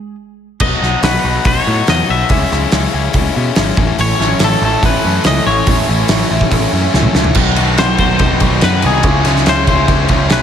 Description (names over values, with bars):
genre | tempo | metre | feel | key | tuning
indie rock | 142 BPM | 4/4 | straight | unclear | A4 = 440 Hz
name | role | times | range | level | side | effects
twangy electric guitar | melody | 0.0-10.4 s | G#4 to E5 | -18 LUFS | left 2 dB | lush chorus, slapback echo, analog delay
crunchy overdriven guitar | riff | 0.6-10.4 s | A2 to E4 | -18 LUFS | left 8 dB | slapback echo
growling picked electric bass | bass | 0.6-10.4 s | G#1 to B2 | -17 LUFS | right 1 dB | overdrive
loose indie drum kit | drums | 0.6-10.4 s | crash cymbal, hi-hat, kick drum, ride cymbal, snare drum, toms | -15 LUFS | equal | none
overdriven semi-hollow guitar | riff | 4.0-10.4 s | A2 to E4 | -19 LUFS | right 7 dB | analog chorus, slapback echo
room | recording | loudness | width
light reverb, small room ambience | none | -10 LUFS | side -8 dB against mid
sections
0.6-7.4 A section; 7.4-10.4 B section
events
stop 0.0-0.6; drum fill 6.9-7.4; clean electric guitar solo 7.4-10.4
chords
0.0 N.C.; 0.6 B; 2.3 C#m; 3.8 A; 7.4 B; 9.0 C#m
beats
0.19 | 0.61 1.03 1.46 1.88 | 2.30 2.72 3.15 3.57 | 3.99 4.41 4.83 5.25 | 5.67 6.10 6.52 6.94 | 7.36 7.78 8.20 8.62 | 9.04 9.46 9.88 10.30